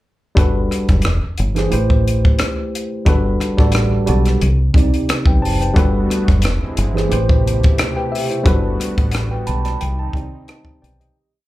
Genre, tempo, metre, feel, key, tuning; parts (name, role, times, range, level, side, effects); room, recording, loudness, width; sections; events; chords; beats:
R&B, neo-soul; 89 BPM; 4/4; swing 55% on 16ths; G major; A4 = 441 Hz
tine electric piano; accompaniment; 0.4-11.3 s; C3 to B5; -20 LUFS; moving between left 2 dB and right 5 dB; auto-pan, plate reverb, slapback echo
deep dub fingered electric bass; bass; 0.4-11.1 s; E1 to C2; -17 LUFS; equal
compact cocktail drum kit; drums; 0.4-11.1 s; hi-hat, kick drum, rim click; -17 LUFS; equal
warm analog pad; sustained chords; 5.8-11.1 s; B2 to G4; -27 LUFS; equal; wide subtle chorus
light reverb; live gig heard through the venue's PA, club ambience; -14 LUFS; side -16 dB against mid
0.4-11.2 groove
fade-out 8.5-11.2; tine electric piano fill 9.1-11.2
0.4 Gmaj9; 1.0 E7alt; 1.7 Am9; 3.1 Gmaj9; 4.4 Cmadd9; 5.8 Gmaj9; 6.4 E7alt; 7.1 Am9; 8.5 Gmaj9; 9.8 Cmadd9
| 0.37 1.04 1.72 2.39 | 3.06 3.74 4.41 5.09 | 5.76 6.43 7.11 7.78 | 8.46 9.13 9.80 10.48